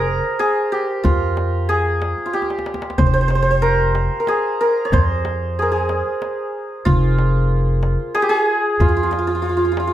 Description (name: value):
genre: Persian modal ensemble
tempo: 93 BPM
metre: 3/4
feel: straight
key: F avaz esfahan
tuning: A4 = 439 Hz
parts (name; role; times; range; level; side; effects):
- santur; melody; 0.0-9.9 s; F4 to D5-50c; -18 LUFS; right 1 dB; plate reverb
- upright bass; bass; 0.0-9.9 s; F1 to F2; -19 LUFS; equal; none
- tombak; percussion; 0.2-9.9 s; none; -22 LUFS; left 1 dB; none
room: moderate small room reverb, RT60 0.5 s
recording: none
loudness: -16 LUFS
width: side -12 dB against mid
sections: 0.0-9.9 A section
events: drum fill 2.3-3.0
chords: none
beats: 0.40 | 1.04 1.69 2.33 | 2.98 3.63 4.27 | 4.92 5.57 6.21 | 6.86 7.51 8.15 | 8.80 9.45